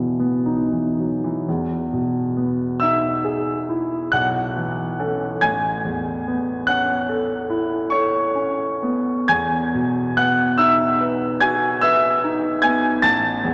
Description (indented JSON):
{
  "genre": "classical, impressionist solo piano",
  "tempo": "47 BPM (dotted quarters)",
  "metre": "9/8",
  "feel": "uneven beats, rubato",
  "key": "E major",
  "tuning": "A4 = 441 Hz",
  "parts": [
    { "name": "warm baby grand piano", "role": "solo", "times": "0.0-13.5 s", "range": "A1 to A6", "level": "-20 LUFS", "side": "equal", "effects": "none" }
  ],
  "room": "wet church reverb, RT60 3.4 s",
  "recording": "none",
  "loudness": "-20 LUFS",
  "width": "mono",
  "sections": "0.0-1.5 A section; 1.5-13.5 A section",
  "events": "none",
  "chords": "0.0 E5; 1.5 Emaj7; 4.1 B11; 5.4 A69; 9.3 Emaj9; 13.0 A5",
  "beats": "| 1.46 2.79 4.12 | 5.42 6.70 7.91 | 9.30 10.57 11.82 | 13.04"
}